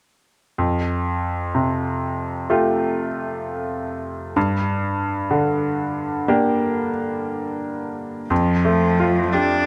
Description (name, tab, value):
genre	neoclassical piano and strings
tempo	57-64 BPM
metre	4/4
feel	rubato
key	F major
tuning	A4 = 443 Hz
part	bright concert grand piano	accompaniment	0.6-9.7 s	F2 to G4	-22 LUFS	equal	none
part	clear cello	second line	8.3-9.7 s	F3 to D4	-22 LUFS	equal	none
room	light reverb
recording	close, detailed microphones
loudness	-22 LUFS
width	mono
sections	0.6-8.3 A section; 8.3-9.7 B section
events	none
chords	0.6 Fadd9; 4.4 Gm; 8.3 Fadd9